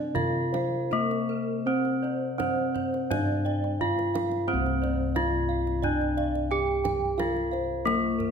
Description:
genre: Javanese gamelan.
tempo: 77-89 BPM.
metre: 4/4.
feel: straight.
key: C slendro.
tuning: A4 = 441 Hz.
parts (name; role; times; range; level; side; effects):
gamelan-type bronze metallophone; melody; 0.0-8.3 s; Bb3-45c to G4+25c; -27 LUFS; equal; none.
gamelan-type bronze metallophone; arpeggios; 0.0-8.3 s; Bb4-45c to G5+25c; -34 LUFS; right 7 dB; none.
gamelan-type bossed gongs; bass; 0.0-8.3 s; C2 to F4-35c; -31 LUFS; left 1 dB; none.
gamelan-type bossed gongs; arpeggios; 0.1-8.2 s; Bb4-45c to G5+25c; -35 LUFS; left 2 dB; none.
kendang; percussion; 0.2-8.3 s; none; -37 LUFS; right 5 dB; none.
room: moderate recital hall reverb, RT60 1.6 s.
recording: none.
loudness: -25 LUFS.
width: side -6 dB against mid.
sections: 0.0-4.5 A section; 4.5-8.3 B section.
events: none.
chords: none.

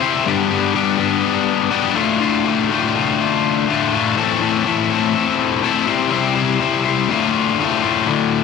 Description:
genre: rock.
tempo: 123 BPM.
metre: 4/4.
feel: straight.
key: D dorian.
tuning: A4 = 441 Hz.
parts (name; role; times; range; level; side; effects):
cranked stack guitar; solo; 0.0-8.4 s; D2 to C5; -15 LUFS; left 7 dB; overdrive, slapback echo.
room: moderate echo chamber reverb, RT60 1.4 s, digital ambience.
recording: none.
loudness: -15 LUFS.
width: side -4 dB against mid.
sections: 0.0-8.1 A section.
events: none.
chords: 0.3 G; 2.0 Dm; 4.2 Am; 5.9 C; 7.1 Dm.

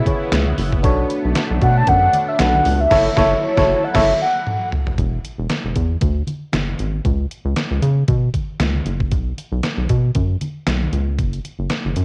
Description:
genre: early-eighties boogie funk.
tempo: 116 BPM.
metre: 4/4.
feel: swing 56% on 16ths.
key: unclear.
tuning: A4 = 440 Hz.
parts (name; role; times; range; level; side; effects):
mellow horn-like synth lead; melody; 0.0-4.7 s; C#5 to A5; -19 LUFS; equal; chorus, cassette tape, plate reverb.
FM electric piano; accompaniment; 0.0-4.1 s; C#4 to C#5; -25 LUFS; equal; chorus, cassette tape, plate reverb.
lush unison pad; sustained chords; 0.0-5.0 s; C#3 to A4; -30 LUFS; equal; chorus, phaser, cassette tape, plate reverb.
detuned 8-bit digital drum machine; drums; 0.1-12.0 s; crash cymbal, handclaps, hi-hat, kick drum, snare drum, toms; -24 LUFS; equal; cassette tape.
congas; percussion; 0.1-12.0 s; none; -32 LUFS; equal; none.
rubbery square bass; bass; 0.3-12.0 s; E1 to C#3; -21 LUFS; equal; none.
room: light reverb.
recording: home recording on cassette.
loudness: -18 LUFS.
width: mono.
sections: 0.0-5.0 A section; 5.0-12.0 B section.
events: band accent 2.9-5.0; drum fill 4.5-5.0.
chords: 0.0 C#m7; 0.8 Bm9; 2.9 F#m7; 5.0 E7; 7.0 F#5; 9.1 Bsus2; 11.2 N.C..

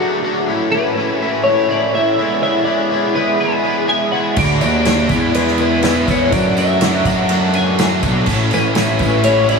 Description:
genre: indie rock.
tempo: 123 BPM.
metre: 4/4.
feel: straight.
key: D lydian.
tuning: A4 = 440 Hz.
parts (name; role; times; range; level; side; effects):
twelve-string electric guitar; melody; 0.0-9.6 s; F#4 to G#5; -18 LUFS; left 1 dB; analog chorus, diffuse ambient delay.
dark analog pad; sustained chords; 0.0-9.6 s; F#3 to E6; -26 LUFS; right 3 dB; chorus, phaser.
overdriven semi-hollow guitar; riff; 0.0-9.6 s; A2 to F#4; -19 LUFS; left 3 dB; analog chorus.
scooped high-gain guitar; riff; 4.4-9.6 s; A2 to F#4; -23 LUFS; right 8 dB; distortion, lush chorus, diffuse ambient delay.
fuzz picked electric bass; bass; 4.4-9.6 s; A1 to F#2; -17 LUFS; right 1 dB; overdrive.
unplugged drum kit; drums; 4.4-9.6 s; crash cymbal, kick drum, ride cymbal, snare drum; -20 LUFS; right 1 dB; none.
tambourine; percussion; 4.4-9.6 s; none; -35 LUFS; right 5 dB; none.
room: wet huge ambient reverb, RT60 8.0 s.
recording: dreamy mix soaked in reverb.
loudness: -13 LUFS.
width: side -4 dB against mid.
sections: 0.0-9.6 A section.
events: none.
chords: 0.5 A; 2.2 E; 4.4 D; 5.1 E; 6.3 D/F#; 8.3 A.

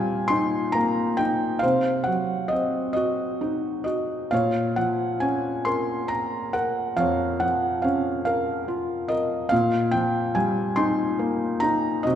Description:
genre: classical, lyrical solo piano.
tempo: 46 BPM (dotted quarters).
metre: 6/8.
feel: uneven beats, rubato.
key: unclear.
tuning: A4 = 440 Hz.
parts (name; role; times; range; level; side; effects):
felt-muted upright piano; solo; 0.0-12.2 s; F2 to C6; -22 LUFS; equal; none.
room: wet scoring stage reverb, RT60 1.9 s.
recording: recorded in a church or concert hall.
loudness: -22 LUFS.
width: side -9 dB against mid.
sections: 0.0-12.2 A section.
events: none.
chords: 0.0 Ebadd9/Bb; 1.6 Cdim; 4.3 Bbm; 9.5 Ebadd9/Bb.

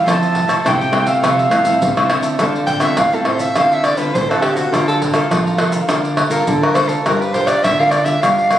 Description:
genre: samba and choro.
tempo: 103 BPM.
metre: 4/4.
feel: straight.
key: D minor.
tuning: A4 = 440 Hz.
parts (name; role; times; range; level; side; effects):
breathy bright jazz flute; second line; 0.0-2.1 s; F5 to A5; -17 LUFS; right 1 dB; none.
cavaquinho; accompaniment; 0.0-8.6 s; D4 to Bb5; -24 LUFS; right 4 dB; none.
nylon-string guitar; bass; 0.0-8.6 s; G2 to F3; -22 LUFS; equal; none.
nylon-string guitar; accompaniment; 0.1-8.6 s; A2 to Bb4; -22 LUFS; left 2 dB; none.
maracas, surdo, pandeiro and tamborim; percussion; 0.1-8.6 s; none; -18 LUFS; equal; none.
growling soprano saxophone; melody; 2.7-8.6 s; F4 to G5; -17 LUFS; right 1 dB; tape echo.
room: moderate studio reverb, RT60 0.7 s.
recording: recorded on a phone in the room, studio reverb.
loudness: -13 LUFS.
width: side -12 dB against mid.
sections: 0.0-2.4 A section; 2.4-8.6 B section.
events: flute solo 0.0-2.4; soprano saxophone solo 2.4-8.6.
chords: 0.1 Fmaj7; 2.4 Dm7; 4.7 Bbmaj7/D; 7.1 Gm7.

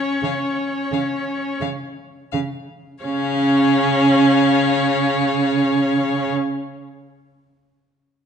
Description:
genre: classical, slow romantic movement for string quartet.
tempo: 40-44 BPM.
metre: 4/4.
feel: rubato.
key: Db major.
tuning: A4 = 440 Hz.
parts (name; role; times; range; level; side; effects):
rich violin; second line; 0.0-6.3 s; Db5; -26 LUFS; left 4 dB; none.
warm viola; accompaniment; 0.0-6.3 s; Db4; -20 LUFS; left 1 dB; none.
rich violin; melody; 0.2-6.3 s; F5; -26 LUFS; left 10 dB; none.
rich cello; bass; 0.2-6.3 s; Db3; -21 LUFS; right 4 dB; none.
room: moderate recital hall reverb, RT60 1.7 s.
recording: nothing above 10.9 kHz.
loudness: -16 LUFS.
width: side -7 dB against mid.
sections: 0.0-3.0 A section; 3.0-8.3 B section.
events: slowing down 0.0-3.0.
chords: 0.0 N.C.; 3.0 Db.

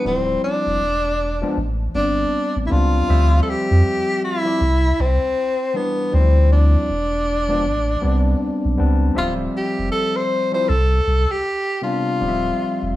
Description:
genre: R&B.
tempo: 79 BPM.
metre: 4/4.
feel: swing 61% on 16ths.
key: D dorian.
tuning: A4 = 439 Hz.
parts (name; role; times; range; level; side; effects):
breathy tenor saxophone; melody; 0.0-13.0 s; B3 to C5; -21 LUFS; left 1 dB; slapback echo.
overdriven tine electric piano; accompaniment; 0.0-13.0 s; C3 to E5; -24 LUFS; left 1 dB; none.
warm sub bass; bass; 0.1-12.9 s; D1 to F2; -18 LUFS; equal; none.
room: light reverb, small room ambience.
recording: none.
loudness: -16 LUFS.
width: side -15 dB against mid.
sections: 0.0-13.0 A section.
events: none.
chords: 0.0 Dm11; 0.8 E7b9; 1.6 Am11; 3.1 Dm11; 4.6 Cmaj7; 6.1 Dm11; 6.9 E7b9; 7.6 Am11; 9.2 Dm11; 10.7 C5; 12.2 Dm11.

